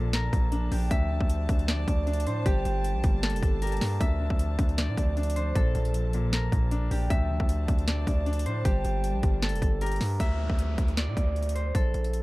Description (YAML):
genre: hip hop, trap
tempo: 155 BPM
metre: 4/4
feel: half-time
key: D minor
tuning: A4 = 440 Hz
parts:
  - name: concert harp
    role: melody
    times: 0.0-12.2 s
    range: G4 to E5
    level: -34 LUFS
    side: equal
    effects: low-pass filter
  - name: dark grand piano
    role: accompaniment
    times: 0.0-10.2 s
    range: Bb2 to G4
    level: -35 LUFS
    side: left 2 dB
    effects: low-pass filter
  - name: dark chamber string section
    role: sustained chords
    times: 0.0-10.2 s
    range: F3 to A5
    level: -39 LUFS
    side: right 1 dB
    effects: none
  - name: distorted 808-style bass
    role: bass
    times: 0.0-12.2 s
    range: F1 to A2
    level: -28 LUFS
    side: equal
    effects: distortion
  - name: downlifter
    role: sound effects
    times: 0.0-0.9, 10.2-12.2 s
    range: none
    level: -42 LUFS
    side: right 2 dB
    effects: none
  - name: trap drum kit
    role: drums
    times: 0.1-12.2 s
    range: hi-hat, kick drum, snare drum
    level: -27 LUFS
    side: equal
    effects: overdrive
room: small room ambience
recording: dark, warm production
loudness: -24 LUFS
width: side -20 dB against mid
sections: 0.0-10.2 A section; 10.2-12.2 B section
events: none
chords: 0.0 Bbmaj7; 0.9 Dm7; 2.5 Gmadd9; 4.0 Dm7; 5.6 Bbmaj7; 7.1 Dm7; 8.7 Gmadd9; 10.2 D5